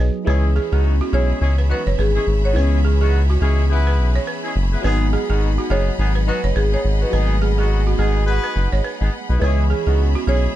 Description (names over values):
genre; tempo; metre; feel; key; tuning
afrobeats; 105 BPM; 4/4; swing 58% on 16ths; C# minor; A4 = 438 Hz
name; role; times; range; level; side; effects
barking FM electric piano; accompaniment; 0.0-10.6 s; E3 to G#4; -27 LUFS; equal; phaser
balafon; riff; 0.0-10.4 s; F#4 to C#5; -28 LUFS; right 8 dB; tape echo
round analog bass; bass; 0.0-10.5 s; F#1 to C#2; -17 LUFS; equal; none
mellow horn section; second line; 0.3-10.5 s; F#3 to B4; -27 LUFS; left 3 dB; tape echo
rich studio string section; sustained chords; 0.3-10.6 s; G#4 to B5; -31 LUFS; equal; none
marimba with medium mallets; melody; 1.1-10.6 s; G#4 to C#5; -25 LUFS; equal; tape echo
room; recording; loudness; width
little or no reverb; dark, warm production; -16 LUFS; side -13 dB against mid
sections
0.3-10.6 A section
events
none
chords
0.3 C#m7; 4.8 G#m7; 9.4 C#m7